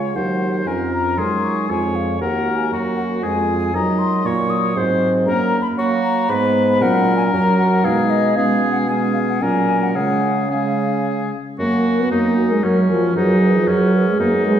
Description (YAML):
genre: quick classical-period movement for wind quintet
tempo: 116 BPM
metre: 3/4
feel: straight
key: F# major from 5.3 s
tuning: A4 = 441 Hz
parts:
  - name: mellow hollow silver concert flute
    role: melody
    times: 0.0-14.6 s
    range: A#4 to Eb6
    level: -23 LUFS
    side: left 5 dB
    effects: none
  - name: clear oboe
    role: second line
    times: 0.0-14.6 s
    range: C#4 to Eb5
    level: -24 LUFS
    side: left 3 dB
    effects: none
  - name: mellow French horn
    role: accompaniment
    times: 0.0-14.6 s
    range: E#3 to B3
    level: -20 LUFS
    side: right 1 dB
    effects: none
  - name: mellow clarinet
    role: accompaniment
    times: 0.0-14.6 s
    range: A#3 to G#4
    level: -24 LUFS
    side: right 4 dB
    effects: none
  - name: mellow bassoon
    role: bass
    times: 0.0-14.6 s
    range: Eb2 to F#3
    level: -22 LUFS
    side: right 1 dB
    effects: none
room: wet recital hall reverb, RT60 1.7 s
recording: heard from further back in the room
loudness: -15 LUFS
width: side -9 dB against mid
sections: 0.0-11.6 A section; 11.6-14.6 B section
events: none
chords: 0.2 Cdim/Eb; 0.7 Db/F; 2.2 Ebm; 3.2 Fm; 3.7 Ebm/Gb; 5.3 F#; 6.3 G#m; 6.8 F#/A#; 7.8 G#m/B; 8.4 C#5/B; 9.4 F#/A#; 10.0 C#; 11.6 F#; 13.2 G#m7/F#